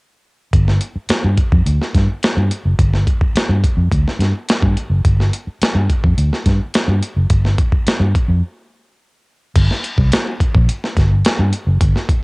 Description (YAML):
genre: funk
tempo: 106 BPM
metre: 4/4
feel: straight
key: unclear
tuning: A4 = 440 Hz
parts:
  - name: vintage muted fingered electric bass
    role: bass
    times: 0.5-11.9 s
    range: F#1 to G2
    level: -14 LUFS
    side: equal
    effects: none
  - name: breakbeat sampler-style drum kit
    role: drums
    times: 0.5-12.2 s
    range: crash cymbal, hi-hat, kick drum, snare drum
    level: -16 LUFS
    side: equal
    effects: none
room: light reverb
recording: home recording on cassette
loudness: -14 LUFS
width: side -29 dB against mid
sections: 0.5-9.6 A section; 9.6-12.2 B section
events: break 8.4-9.6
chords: none